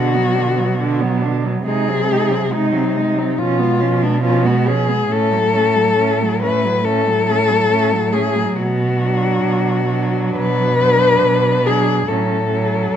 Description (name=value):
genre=classical, lyrical piece for cello ensemble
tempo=70 BPM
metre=4/4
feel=rubato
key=F# minor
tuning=A4 = 442 Hz
part: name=muted cello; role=melody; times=0.0-13.0 s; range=D4 to B4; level=-17 LUFS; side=left 4 dB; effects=none
part: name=muted cello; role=second line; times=0.0-13.0 s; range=A3 to D#4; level=-23 LUFS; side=right 10 dB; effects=none
part: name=muted cello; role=accompaniment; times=0.0-13.0 s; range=D3 to A3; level=-23 LUFS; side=equal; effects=none
part: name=muted cello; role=bass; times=0.0-13.0 s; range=A2 to B#2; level=-20 LUFS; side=right 3 dB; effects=none
room=moderate recital hall reverb, RT60 1.6 s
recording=close, detailed microphones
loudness=-14 LUFS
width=side -9 dB against mid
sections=0.0-13.0 A section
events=none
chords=0.0 Bm; 1.7 G#7/B#; 3.4 C#7/B; 5.1 F#m/A; 8.6 Bm; 12.1 F#m/A